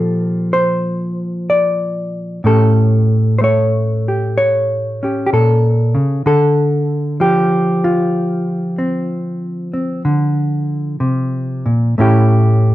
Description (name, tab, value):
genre	solo jazz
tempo	63 BPM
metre	4/4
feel	swing 66% on 8ths, rubato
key	D minor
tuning	A4 = 440 Hz
part	hollow-body jazz guitar	solo	0.0-12.7 s	A2 to D5	-13 LUFS	equal	none
room	light reverb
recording	dark, warm production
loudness	-13 LUFS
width	side -15 dB against mid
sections	0.0-12.7 A section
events	none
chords	0.0 Bbmaj7; 2.4 A7; 6.3 Dm7; 12.0 A7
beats	0.51 1.48 | 2.45 3.41 4.37 5.31 | 6.26 7.20 8.15 9.10 | 10.05 11.01 11.97